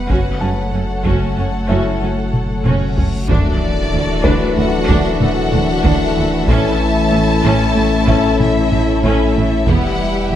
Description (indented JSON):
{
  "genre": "cinematic, hybrid orchestral and electronic film score",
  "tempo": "94 BPM",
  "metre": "5/4",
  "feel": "straight",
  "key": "unclear",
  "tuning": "A4 = 439 Hz",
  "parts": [
    { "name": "rich symphonic violin section", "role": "second line", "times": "0.0-10.4 s", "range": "G4 to F#5", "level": "-24 LUFS", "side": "left 5 dB", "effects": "none" },
    { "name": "warm analog pad", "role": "sustained chords", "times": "0.0-10.4 s", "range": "E3 to F#5", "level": "-22 LUFS", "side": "equal", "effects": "chorus" },
    { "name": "warm sub bass", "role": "bass", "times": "0.0-10.4 s", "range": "D1 to A1", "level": "-22 LUFS", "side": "equal", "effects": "none" },
    { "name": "rich symphonic viola section", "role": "accompaniment", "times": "0.1-10.4 s", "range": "E3 to F#4", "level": "-22 LUFS", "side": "right 1 dB", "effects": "none" },
    { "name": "rich symphonic cello section", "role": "bass", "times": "0.1-10.4 s", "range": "D2 to A2", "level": "-22 LUFS", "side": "right 2 dB", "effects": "none" },
    { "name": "rich symphonic double bass section", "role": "bass", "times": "0.1-10.4 s", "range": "E1 to D2", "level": "-23 LUFS", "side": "right 3 dB", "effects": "none" },
    { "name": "solo taiko drums", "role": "drums", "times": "0.1-10.3 s", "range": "none", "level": "-21 LUFS", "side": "equal", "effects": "none" },
    { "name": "reverse cymbal and sub drop", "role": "sound effects", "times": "3.1-6.5 s", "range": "none", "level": "-23 LUFS", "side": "equal", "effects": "none" },
    { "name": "felt-muted upright piano", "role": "texture", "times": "0.4-10.4 s", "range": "E4 to A5", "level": "-26 LUFS", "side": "left 2 dB", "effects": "digital delay" },
    { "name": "rich symphonic violin section", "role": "melody", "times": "3.3-10.4 s", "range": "D5 to A5", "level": "-23 LUFS", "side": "left 3 dB", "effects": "none" },
    { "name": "clear trombone section", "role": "sustained chords", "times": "3.3-10.4 s", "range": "F#2 to E3", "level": "-24 LUFS", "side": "right 2 dB", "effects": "none" },
    { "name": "warm French horn section", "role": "sustained chords", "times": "3.3-10.4 s", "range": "G3 to E4", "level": "-22 LUFS", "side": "left 7 dB", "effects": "none" }
  ],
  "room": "wet scoring stage reverb, RT60 1.6 s",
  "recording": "dark, warm production",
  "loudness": "-13 LUFS",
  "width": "side -11 dB against mid",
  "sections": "0.0-3.3 A section; 3.3-10.4 B section",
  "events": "drum fill 2.3-3.3; reverse cymbal 3.1; impact 3.3-6.5",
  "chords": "0.1 F#m; 3.3 Dadd9; 6.5 A; 9.7 Emadd9"
}